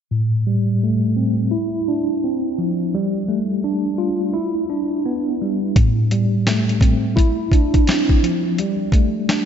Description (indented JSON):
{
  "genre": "hip hop, boom-bap hip-hop",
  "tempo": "85 BPM",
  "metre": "4/4",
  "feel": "swing 60% on 16ths",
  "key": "A minor",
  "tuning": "A4 = 440 Hz",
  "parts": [
    { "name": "mellow tine electric piano", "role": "accompaniment", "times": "0.1-9.5 s", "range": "A2 to F4", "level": "-18 LUFS", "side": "equal", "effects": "medium stereo tremolo, low-pass filter" },
    { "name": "boom bap sampler-style drum kit", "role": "drums", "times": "5.8-9.5 s", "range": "hi-hat, kick drum, snare drum", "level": "-16 LUFS", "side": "equal", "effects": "none" }
  ],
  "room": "wet lush hall reverb, RT60 2.7 s",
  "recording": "dreamy mix soaked in reverb, nothing above 7.6 kHz",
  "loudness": "-16 LUFS",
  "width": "side -8 dB against mid",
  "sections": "0.1-9.5 A section",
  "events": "filter sweep on tine electric piano 0.1-9.5",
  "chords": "0.1 Am7; 1.5 Dm9; 2.9 F69; 4.3 Em7; 5.8 Am7; 7.2 Dm9; 8.6 F69 (rootless)",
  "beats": "| 0.11 0.82 1.52 2.23 | 2.93 3.64 4.34 5.05 | 5.76 6.46 7.17 7.88 | 8.58 9.29"
}